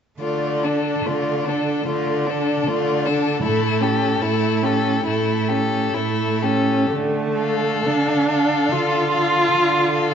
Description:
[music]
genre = classical, slow romantic movement for string quartet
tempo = 58-81 BPM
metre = 4/4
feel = rubato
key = D minor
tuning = A4 = 440 Hz
[part]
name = warm violin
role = melody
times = 0.2-10.1 s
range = G4 to F5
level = -26 LUFS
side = left 10 dB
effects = none
[part]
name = rich violin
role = second line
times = 0.2-10.1 s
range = D4 to A4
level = -25 LUFS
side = left 4 dB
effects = none
[part]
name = rich viola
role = accompaniment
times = 0.2-10.1 s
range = A3 to F4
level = -21 LUFS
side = right 1 dB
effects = none
[part]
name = rich cello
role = bass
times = 0.2-10.1 s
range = A2 to D3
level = -24 LUFS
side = right 5 dB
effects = none
[sound]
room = moderate recital hall reverb, RT60 1.6 s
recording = nothing above 7.8 kHz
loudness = -18 LUFS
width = side -8 dB against mid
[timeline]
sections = 0.2-6.9 A section; 6.9-10.1 B section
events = none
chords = 0.2 Dm; 3.4 A7; 6.9 Dm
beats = | 0.21 1.06 1.87 2.68 | 3.44 4.22 5.06 5.95 | 6.92 7.87 8.72 9.53

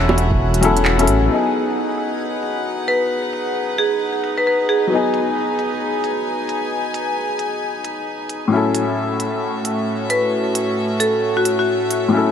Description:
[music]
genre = future garage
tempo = 133 BPM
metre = 4/4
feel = swing 62% on 16ths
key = unclear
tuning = A4 = 440 Hz
[part]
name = felt-muted upright piano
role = accompaniment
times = 0.0-12.3 s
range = A2 to A4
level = -21 LUFS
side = left 4 dB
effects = sidechain pumping, analog delay
[part]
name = rich chamber string section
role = sustained chords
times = 0.0-12.3 s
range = A2 to G#5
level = -23 LUFS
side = equal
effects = sidechain pumping
[part]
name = dark detuned saw bass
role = bass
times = 0.0-1.3 s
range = E1 to A1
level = -17 LUFS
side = right 1 dB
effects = sidechain pumping
[part]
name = backwards swelling texture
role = texture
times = 0.0-1.3 s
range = G#4 to G#5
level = -34 LUFS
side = equal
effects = none
[part]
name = organic electronic drum kit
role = drums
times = 0.1-12.0 s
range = bongos, handclaps, hi-hat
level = -24 LUFS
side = right 3 dB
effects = low-pass filter on hats, low-pass filter on snare, low-pass filter on perc, low-pass filter on room
[part]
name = marimba with hard mallets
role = melody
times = 2.9-5.3, 10.1-11.9 s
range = F#4 to B4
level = -20 LUFS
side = equal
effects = analog delay
[sound]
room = moderate huge ambient reverb, RT60 5.3 s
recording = none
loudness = -17 LUFS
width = side -8 dB against mid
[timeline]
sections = 0.0-1.3 A section; 1.3-12.3 B section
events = band accent 0.9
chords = 0.0 F#m7; 1.3 G#m7; 8.5 F#m7/A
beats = 0.40 0.85 | 1.30 1.75 2.21 2.66 | 3.11 3.56 4.01 4.46 | 4.91 5.36 5.82 6.27 | 6.72 7.17 7.62 8.07 | 8.52 8.97 9.42 9.88 | 10.33 10.78 11.23 11.68 | 12.13

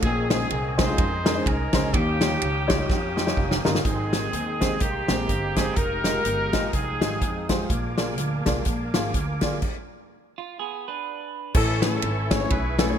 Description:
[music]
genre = uptempo gospel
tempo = 125 BPM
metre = 4/4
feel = swing 58% on 8ths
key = Ab major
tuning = A4 = 441 Hz
[part]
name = clear horn section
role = melody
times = 0.0-7.7, 11.6-13.0 s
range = Bb3 to C#5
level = -29 LUFS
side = left 2 dB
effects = none
[part]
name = warm upright piano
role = accompaniment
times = 0.0-13.0 s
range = Ab2 to F5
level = -29 LUFS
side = left 2 dB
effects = none
[part]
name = tonewheel organ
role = sustained chords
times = 0.0-13.0 s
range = Ab3 to Eb6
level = -35 LUFS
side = right 3 dB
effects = slow rotary speaker, overdrive, chorus vibrato
[part]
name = upright bass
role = bass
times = 0.0-12.9 s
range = F1 to F2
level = -29 LUFS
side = equal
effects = none
[part]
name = natural country drum kit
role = drums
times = 0.0-12.9 s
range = crash cymbal, hi-hat, kick drum, ride cymbal, snare drum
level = -24 LUFS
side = equal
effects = gated reverb
[part]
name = clear trumpet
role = melody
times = 3.8-7.5 s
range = G4 to Bb4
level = -31 LUFS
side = right 4 dB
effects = none
[part]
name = warm chamber string section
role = sustained chords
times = 3.9-9.6 s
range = Eb3 to Eb4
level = -40 LUFS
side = right 1 dB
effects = none
[part]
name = clean electric guitar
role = second line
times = 10.4-11.5 s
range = Cb4 to Cb5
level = -32 LUFS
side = right 9 dB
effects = lush chorus, ping-pong delay
[sound]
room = light reverb, studio ambience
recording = bright 1980s-style digital production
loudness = -22 LUFS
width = side -8 dB against mid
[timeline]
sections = 0.0-3.9 A section; 3.9-11.6 B section; 11.6-13.0 A section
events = drum fill 2.9-3.9; stop 9.6-11.6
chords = 0.0 Bbm11; 1.9 Eb9; 3.9 Abmaj9; 5.8 Fm9; 7.7 Bb7; 9.6 N.C.; 11.6 Amaj9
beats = | 0.03 0.51 0.98 1.46 | 1.94 2.42 2.89 3.37 | 3.85 4.33 4.81 5.29 | 5.77 6.25 6.73 7.22 | 7.70 8.18 8.66 9.14 | 9.63 10.11 10.59 11.07 | 11.55 12.04 12.52

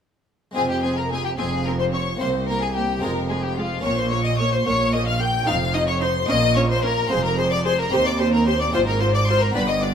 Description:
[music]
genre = classical, baroque-style concerto movement with solo episodes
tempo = 73 BPM (dotted quarters)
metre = 6/8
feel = straight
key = F minor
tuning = A4 = 439 Hz
[part]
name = clear violin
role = melody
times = 0.5-9.9 s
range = F4 to G5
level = -25 LUFS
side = left 2 dB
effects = none
[part]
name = harpsichord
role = accompaniment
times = 0.5-9.9 s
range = C2 to G4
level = -30 LUFS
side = right 1 dB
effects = none
[part]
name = clear symphonic violin section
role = melody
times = 0.6-9.9 s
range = F5 to G6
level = -28 LUFS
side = left 4 dB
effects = none
[part]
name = warm symphonic violin section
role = second line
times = 0.6-9.9 s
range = F4 to G5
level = -26 LUFS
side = left 4 dB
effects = none
[part]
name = rich chamber viola section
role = accompaniment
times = 0.6-9.9 s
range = Ab3 to Ab4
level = -30 LUFS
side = right 1 dB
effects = none
[part]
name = clear chamber double bass section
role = bass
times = 0.6-9.9 s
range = F1 to Eb2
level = -26 LUFS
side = right 3 dB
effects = none
[part]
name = rich studio cello section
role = bass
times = 0.6-9.9 s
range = C2 to Bb2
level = -26 LUFS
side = right 2 dB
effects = none
[sound]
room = moderate recital hall reverb, RT60 1.6 s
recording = none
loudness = -19 LUFS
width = side -8 dB against mid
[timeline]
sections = 0.6-9.9 A section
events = none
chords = 0.6 Fm; 2.2 C7; 3.0 Fm; 3.8 Bbm; 5.5 F7; 6.3 Bbm; 7.1 Fm; 7.9 Cm/Eb; 8.7 Fm/Ab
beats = | 0.56 1.38 | 2.20 3.02 | 3.84 4.66 | 5.48 6.29 | 7.11 7.93 | 8.74 9.55

